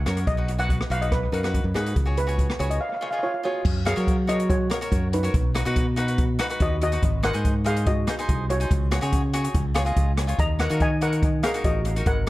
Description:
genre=calypso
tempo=142 BPM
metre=4/4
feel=straight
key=F# major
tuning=A4 = 440 Hz
part: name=modern bright fingered electric bass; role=bass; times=0.0-12.3 s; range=G#1 to F#3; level=-24 LUFS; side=equal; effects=none
part: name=cavaquinho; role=accompaniment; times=0.1-12.3 s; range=D#4 to D#5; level=-30 LUFS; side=left 1 dB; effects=analog delay
part: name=open jazz drum kit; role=drums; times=0.1-12.3 s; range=crash cymbal, hi-hat, kick drum, rim click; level=-25 LUFS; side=equal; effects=none
part: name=steel pan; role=melody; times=0.3-12.3 s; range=D#4 to A#5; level=-28 LUFS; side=equal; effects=analog delay
room=light reverb, studio ambience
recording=echo-heavy mix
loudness=-21 LUFS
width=side -17 dB against mid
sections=0.0-3.7 A section; 3.7-12.3 B section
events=break 2.8-3.7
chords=0.3 B; 2.0 C#sus4; 2.8 C#; 3.7 F#add9; 5.3 B; 7.0 G#7; 8.7 C#sus4; 9.5 C#; 10.4 D#m

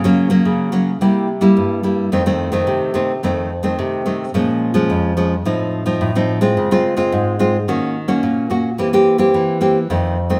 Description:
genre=samba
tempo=108 BPM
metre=4/4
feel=straight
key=unclear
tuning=A4 = 440 Hz
part: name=nylon-string guitar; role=solo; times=0.0-10.4 s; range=F2 to G4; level=-17 LUFS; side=equal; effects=none
room=wet stone room reverb, RT60 1.4 s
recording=band playing live in one room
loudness=-17 LUFS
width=mono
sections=0.0-10.4 A section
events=none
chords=0.0 Gb/Db; 1.0 C7; 2.1 F7; 4.3 Bbm7; 5.5 F7/A; 6.6 Dbmaj7; 7.7 Ebm7; 8.8 C7/E

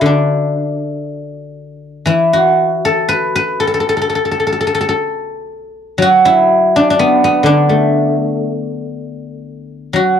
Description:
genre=chinese traditional, Chinese solo plucked strings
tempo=61 BPM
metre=2/4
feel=uneven beats, rubato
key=D gong mode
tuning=A4 = 440 Hz
part: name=guzheng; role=solo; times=0.0-10.2 s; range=D3 to B4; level=-12 LUFS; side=equal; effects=cassette tape
room=moderate studio reverb, RT60 0.6 s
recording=home recording on cassette, faint mains hum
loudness=-11 LUFS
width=side -8 dB against mid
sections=0.0-2.1 A section; 2.1-10.2 B section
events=none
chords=none

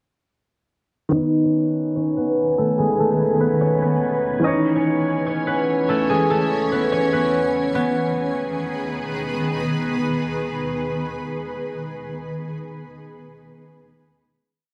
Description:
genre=hip hop, drill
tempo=145 BPM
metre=4/4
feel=half-time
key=G# phrygian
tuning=A4 = 439 Hz
part: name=concert harp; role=melody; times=1.1-10.9 s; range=G#3 to D#5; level=-22 LUFS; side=equal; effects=low-pass filter, tape echo
part: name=dark concert grand piano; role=accompaniment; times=1.1-7.7 s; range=D#3 to C#5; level=-28 LUFS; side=equal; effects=low-pass filter
part: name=granular cloud pad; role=sustained chords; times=2.0-11.8 s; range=D#3 to G#5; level=-27 LUFS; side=equal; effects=built-in reverb, low-pass filter
room=light reverb, small room ambience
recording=none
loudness=-21 LUFS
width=mono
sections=1.1-7.7 breakdown; 7.7-11.1 final chord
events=filter sweep 1.1-7.7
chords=1.1 G#m; 4.4 C#m; 7.7 G#m

